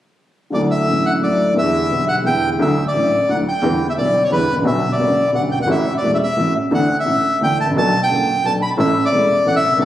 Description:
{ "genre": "tango", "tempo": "175 BPM", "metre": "3/4", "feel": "rubato", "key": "D major", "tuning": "A4 = 439 Hz", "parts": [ { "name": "bandoneon", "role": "melody", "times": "0.5-9.8 s", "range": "B4 to B5", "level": "-17 LUFS", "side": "equal", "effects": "none" }, { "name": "warm concert grand piano", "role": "accompaniment", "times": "0.5-9.8 s", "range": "E1 to A4", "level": "-18 LUFS", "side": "equal", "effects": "none" }, { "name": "clear double bass", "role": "bass", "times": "0.5-9.8 s", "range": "E1 to E2", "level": "-24 LUFS", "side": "right 1 dB", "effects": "none" } ], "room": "wet concert hall reverb, RT60 2.2 s", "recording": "recorded on a phone in the room, club reverb, compression", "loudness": "-14 LUFS", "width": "side -12 dB against mid", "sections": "0.5-2.6 A section; 2.6-9.8 B section", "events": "none", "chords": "0.5 Dadd9; 1.6 Em7; 2.6 Dadd9; 3.6 Em7; 4.6 Bmadd9; 5.7 A6; 6.7 Dsus2; 7.8 Bm7; 8.8 A" }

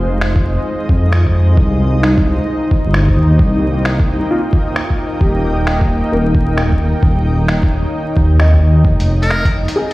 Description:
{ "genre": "future garage", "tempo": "132 BPM", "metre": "4/4", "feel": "swing 65% on 16ths", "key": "F minor", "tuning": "A4 = 440 Hz", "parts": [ { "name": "dark upright piano", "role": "accompaniment", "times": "0.0-9.9 s", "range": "Eb4 to Eb5", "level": "-23 LUFS", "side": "equal", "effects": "sidechain pumping, analog delay" }, { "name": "granular cloud pad", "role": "sustained chords", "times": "0.0-9.9 s", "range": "Ab3 to G5", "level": "-20 LUFS", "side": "equal", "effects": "built-in reverb, sidechain pumping" }, { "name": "dark detuned saw bass", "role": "bass", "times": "0.0-9.7 s", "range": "Eb1 to F2", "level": "-13 LUFS", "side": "equal", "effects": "sidechain pumping" }, { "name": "lo-fi sampler-style drum kit", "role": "drums", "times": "0.2-9.9 s", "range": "finger snaps, hi-hat", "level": "-23 LUFS", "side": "equal", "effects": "studio reverb" }, { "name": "electronic kick drum", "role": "drums", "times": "0.4-9.5 s", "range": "none", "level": "-14 LUFS", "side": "equal", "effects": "studio reverb" }, { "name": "trumpet with metal mute", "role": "melody", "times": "9.2-9.5 s", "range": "Bb4", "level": "-20 LUFS", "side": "equal", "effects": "tape echo" } ], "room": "light reverb, digital ambience", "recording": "played on a big sound system in a bare room, stone room reverb, vinyl crackle", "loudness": "-11 LUFS", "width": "side -19 dB against mid", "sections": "0.0-9.9 A section", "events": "none", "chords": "0.0 Fm7; 1.6 Cm7; 5.2 Eb7; 8.9 Fm7" }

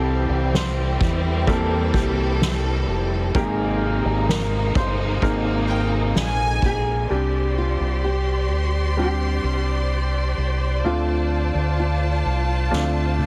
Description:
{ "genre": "pop ballad", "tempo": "64 BPM", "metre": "4/4", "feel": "straight", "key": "unclear", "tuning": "A4 = 439 Hz", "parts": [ { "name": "nylon-string guitar", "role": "melody", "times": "0.0-13.3 s", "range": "F4 to C5", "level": "-31 LUFS", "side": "equal", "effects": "none" }, { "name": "clear concert grand piano", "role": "accompaniment", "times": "0.0-13.3 s", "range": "Ab2 to C5", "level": "-30 LUFS", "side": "equal", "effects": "none" }, { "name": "warm studio string section", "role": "sustained chords", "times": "0.0-13.3 s", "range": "C3 to C6", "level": "-30 LUFS", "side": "equal", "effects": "none" }, { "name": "fingered electric bass with an envelope filter", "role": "bass", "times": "0.0-13.3 s", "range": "F1 to E2", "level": "-25 LUFS", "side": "equal", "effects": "none" }, { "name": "soft-mallet drum kit", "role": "drums", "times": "0.1-6.8, 12.7-13.3 s", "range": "kick drum, ride cymbal, snare drum, toms", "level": "-28 LUFS", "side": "equal", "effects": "none" }, { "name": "dark studio violin section", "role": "second line", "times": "5.7-7.1 s", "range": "G5 to Ab5", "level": "-31 LUFS", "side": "equal", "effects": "tape echo" } ], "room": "light reverb, small room reverb", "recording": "heavily compressed radio sound", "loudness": "-22 LUFS", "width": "mono", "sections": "0.0-7.1 A section; 7.1-13.3 B section", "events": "drum fill 12.7-13.3", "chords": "0.0 C; 3.3 Abadd9; 7.1 Csus2; 10.8 Dm7" }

